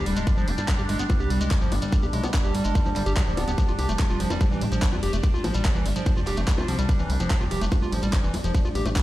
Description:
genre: psychedelic trance.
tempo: 145 BPM.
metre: 4/4.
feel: straight.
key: unclear.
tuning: A4 = 442 Hz.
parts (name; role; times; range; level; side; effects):
overtone-sweeping drone; sustained chords; 0.0-9.0 s; G3 to D4; -31 LUFS; equal; chorus, built-in reverb, sidechain pumping.
overdriven acid bass; riff; 0.0-8.9 s; E3 to G4; -30 LUFS; moving between left 3 dB and right 3 dB; auto-pan, sidechain pumping, digital delay.
plucky analog bass; bass; 0.0-8.9 s; D1 to C2; -26 LUFS; equal; tube saturation.
garage drum kit; drums; 0.1-9.0 s; bongos, handclaps, hi-hat, ride cymbal; -32 LUFS; equal; overdrive, small room ambience.
shekere; percussion; 0.2-9.0 s; none; -40 LUFS; left 1 dB; none.
electronic kick drum; drums; 0.3-9.0 s; none; -22 LUFS; equal; overdrive, small room ambience.
room: light reverb, digital ambience.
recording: played on a big sound system in a bare room, large studio reverb.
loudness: -21 LUFS.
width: side -16 dB against mid.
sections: 0.0-9.0 A section.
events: none.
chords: 0.0 G5; 3.6 F5.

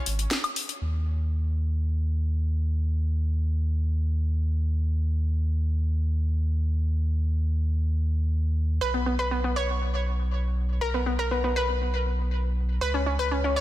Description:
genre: progressive house.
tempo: 120 BPM.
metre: 4/4.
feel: straight.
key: unclear.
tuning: A4 = 441 Hz.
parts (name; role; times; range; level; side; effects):
analog pluck; arpeggios; 0.0-0.7, 8.8-13.6 s; B3 to C#5; -28 LUFS; equal; chorus, digital delay.
saturated sub bass; bass; 0.1-13.6 s; Ab1 to Eb2; -24 LUFS; equal; none.
house drum kit; drums; 0.1-0.8 s; hi-hat, snare drum, woodblock; -28 LUFS; left 1 dB; overdrive, low-pass filter on hats, small room ambience, low-pass filter on snare, low-pass filter on perc.
room: light reverb.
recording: dense, heavily limited modern master.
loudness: -24 LUFS.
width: side -15 dB against mid.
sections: 0.8-13.6 A section.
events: none.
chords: 0.0 Db5; 0.8 N.C.; 8.8 Bsus2; 12.8 Db7(no3).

